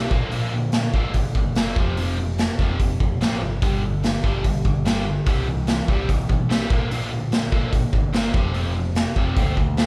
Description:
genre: classic rock.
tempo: 146 BPM.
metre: 4/4.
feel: straight.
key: unclear.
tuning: A4 = 439 Hz.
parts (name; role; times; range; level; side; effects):
biting overdriven guitar; riff; 0.0-9.9 s; F2 to C4; -29 LUFS; equal; none.
growling picked electric bass; bass; 0.0-9.9 s; F1 to D2; -29 LUFS; equal; overdrive.
raw garage drum kit; drums; 0.1-9.9 s; hi-hat, kick drum, snare drum; -24 LUFS; equal; none.
room: light reverb.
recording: band playing live in one room.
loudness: -22 LUFS.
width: mono.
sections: 0.0-9.9 A section.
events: none.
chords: 0.1 Bb; 1.8 F5; 3.6 G5; 5.3 C; 6.7 Bb; 8.3 F5.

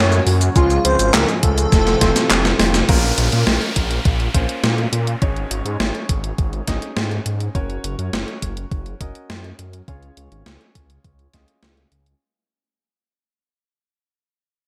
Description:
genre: synthwave.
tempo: 103 BPM.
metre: 4/4.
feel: straight.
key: unclear.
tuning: A4 = 439 Hz.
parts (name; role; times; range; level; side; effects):
soft octave-layered synth lead; melody; 0.0-2.6 s; F4 to Db5; -24 LUFS; equal; chorus, tremolo, delay.
airy dreamy lead; second line; 0.0-2.6 s; F4 to Db5; -29 LUFS; equal; chorus, tape echo.
warm analog pad; sustained chords; 0.0-2.9 s; Ab2 to Gb4; -29 LUFS; equal; none.
warm baby grand piano; stabs; 0.0-12.2 s; Ab3 to Eb5; -30 LUFS; equal; low-pass filter, tape echo.
detuned saw bass; bass; 0.0-12.1 s; F1 to Bb2; -23 LUFS; equal; chorus, tube saturation.
gated 80s digital drum machine; drums; 0.1-12.2 s; crash cymbal, handclaps, hi-hat, shaker, snare drum; -22 LUFS; equal; gated reverb, gated reverb snare, overdrive, small room ambience.
electronic kick drum; drums; 0.6-11.5 s; none; -21 LUFS; equal; overdrive, small room ambience.
downlifter; sound effects; 2.9-7.5 s; none; -30 LUFS; equal; none.
room: light reverb.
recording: none.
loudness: -18 LUFS.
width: mono.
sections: 0.0-2.9 A section; 2.9-12.2 B section.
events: drum fill 1.7-2.9; kick drops out 2.3-2.9; band accent 2.7; fade-out 2.9-12.2; filter sweep on detuned saw bass 2.9-12.2; filter sweep on grand piano 2.9-12.2.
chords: 0.0 Gb; 0.6 Db; 1.7 F; 2.9 Bbm; 5.2 Absus4; 7.5 Gb; 9.9 Db.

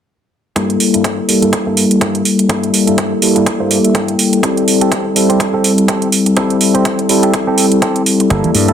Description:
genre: filtered disco house.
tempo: 124 BPM.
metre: 4/4.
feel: swing 57% on 16ths.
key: G dorian.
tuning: A4 = 440 Hz.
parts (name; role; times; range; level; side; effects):
bell-like tine electric piano; accompaniment; 0.6-8.7 s; G3 to A4; -12 LUFS; left 1 dB; phaser, vintage 12-bit sampler grit, sidechain pumping, low-pass filter.
direct-recorded clean electric guitar; riff; 0.6-8.7 s; G2 to G5; -21 LUFS; right 4 dB; sidechain pumping, low-pass filter.
electronic hi-hat; drums; 0.6-8.7 s; none; -16 LUFS; right 5 dB; sidechain pumping on hats, studio reverb.
electronic kick drum; drums; 0.6-8.4 s; none; -20 LUFS; equal; overdrive, high-pass filter on kick, studio reverb, high-pass filter on room.
dry thumbed slap bass; bass; 8.3-8.7 s; G1 to G2; -14 LUFS; equal; sidechain pumping, low-pass filter.
tube shaker and congas; percussion; 8.3-8.7 s; none; -19 LUFS; right 4 dB; sidechain pumping on perc, low-pass filter on perc.
room: moderate lush hall reverb, RT60 1.8 s.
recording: none.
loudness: -11 LUFS.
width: side -8 dB against mid.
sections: 0.6-8.7 A section.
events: filter sweep 0.6-8.7; clean electric guitar fill 3.5-4.4.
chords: 0.6 Gm69; 4.4 Am7.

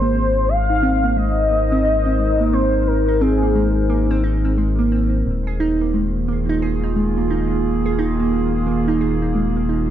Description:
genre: IDM.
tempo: 88 BPM.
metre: 4/4.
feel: swing 62% on 16ths.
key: Ab major.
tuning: A4 = 444 Hz.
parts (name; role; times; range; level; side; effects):
warm velvety synth lead; melody; 0.0-3.9 s; Ab4 to F5; -21 LUFS; left 1 dB; chorus, digital delay.
warbly tape-like pad; sustained chords; 0.0-9.9 s; Eb3 to C5; -23 LUFS; right 1 dB; chorus, built-in reverb.
harp-like synth pluck; arpeggios; 0.0-9.9 s; Ab3 to Ab4; -21 LUFS; right 3 dB; chorus, tape echo.
rubbery square bass; bass; 0.0-9.9 s; Eb1 to Ab1; -21 LUFS; left 1 dB; none.
room: moderate lush hall reverb, RT60 2.5 s.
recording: none.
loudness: -16 LUFS.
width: side -10 dB against mid.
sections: 0.0-9.9 A section.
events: none.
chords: 0.0 Abadd9; 5.3 Ebsus4.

